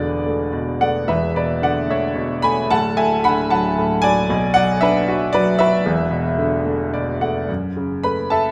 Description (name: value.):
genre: classical, lyrical solo piano.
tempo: 112 BPM.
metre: 3/4.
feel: rubato.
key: unclear.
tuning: A4 = 440 Hz.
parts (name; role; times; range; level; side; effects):
clear grand piano; solo; 0.0-8.5 s; D1 to B5; -19 LUFS; equal; none.
room: moderate recital hall reverb, RT60 1.3 s.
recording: none.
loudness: -19 LUFS.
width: mono.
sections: 0.0-7.5 A section; 7.5-8.5 B section.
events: grand piano fill 6.7-7.5.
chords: 0.0 E7sus4; 2.7 D; 4.3 Bm; 5.9 E7sus4; 7.5 F#m7.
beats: 0.00 0.54 | 1.08 1.62 2.17 | 2.70 3.24 3.77 | 4.29 4.81 5.33 | 5.85 6.38 6.93 | 7.49 8.04.